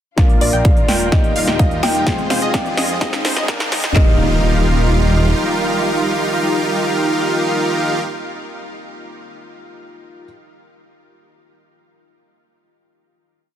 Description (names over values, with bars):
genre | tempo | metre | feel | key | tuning
EDM, festival progressive house | 127 BPM | 4/4 | straight | Eb major | A4 = 440 Hz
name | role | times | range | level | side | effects
kalimba | melody | 0.2-8.0 s | D5 to G5 | -24 LUFS | equal | dub echo
felt-muted upright piano | accompaniment | 0.2-10.3 s | Ab3 to Bb4 | -28 LUFS | left 4 dB | sidechain pumping
warm studio string section | sustained chords | 0.2-8.0 s | F3 to Ab4 | -28 LUFS | right 2 dB | sidechain pumping
wide unison pluck | arpeggios | 0.2-8.0 s | Bb4 to G5 | -29 LUFS | right 1 dB | none
dense compressed supersaw | riff | 0.2-8.0 s | Eb4 to G5 | -20 LUFS | right 1 dB | sidechain pumping, low-pass filter, dub echo
wide detuned saw bass | bass | 0.2-5.3 s | Eb1 to Ab2 | -19 LUFS | equal | chorus, sidechain pumping
big-room dance drum kit | drums | 0.2-4.1 s | handclaps, kick drum | -14 LUFS | equal | none
big-room dance drum kit | drums | 0.2-3.9 s | hi-hat, snare drum | -23 LUFS | equal | none
riser and impact | sound effects | 2.3-8.0 s | none | -29 LUFS | equal | none
room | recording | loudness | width
light reverb | dense, heavily limited modern master, high-pass filter | -14 LUFS | side -10 dB against mid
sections
0.2-4.0 build; 4.0-7.7 final chord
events
build-up 0.2-4.0; drum fill 0.2-4.0; filter sweep on supersaw synth 0.2-4.0; filter sweep 0.2-4.0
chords
0.2 Bb; 1.1 Ebadd9; 2.1 Fm; 3.0 Ab; 4.0 Ebadd9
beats
| 0.18 0.65 1.12 1.59 | 2.07 2.54 3.01 3.48 | 3.96 4.43 4.90 5.37 | 5.85 6.32 6.79 7.26